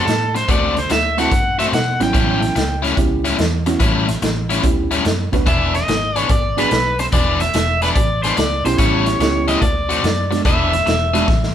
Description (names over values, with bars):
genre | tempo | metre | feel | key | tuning
electric blues shuffle | 144 BPM | 4/4 | swing 67% on 8ths | A mixolydian | A4 = 442 Hz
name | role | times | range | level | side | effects
crunchy overdriven guitar | melody | 0.0-2.8, 5.5-11.5 s | A4 to G5 | -20 LUFS | equal | none
biting overdriven guitar | riff | 0.0-11.3 s | A2 to G#4 | -21 LUFS | left 4 dB | none
vintage muted fingered electric bass | bass | 0.1-11.5 s | E1 to B2 | -22 LUFS | right 1 dB | none
raw garage drum kit | drums | 0.1-11.5 s | hi-hat, kick drum, snare drum | -20 LUFS | equal | none
reed electric piano | accompaniment | 1.2-11.3 s | F#3 to B4 | -22 LUFS | right 4 dB | none
room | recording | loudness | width
moderate studio reverb, RT60 0.9 s | band playing live in one room | -14 LUFS | side -10 dB against mid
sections
0.0-11.5 A section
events
drum fill 11.3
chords
0.0 D7; 2.1 A7; 5.5 E7; 8.8 A7; 9.6 D7; 10.4 E7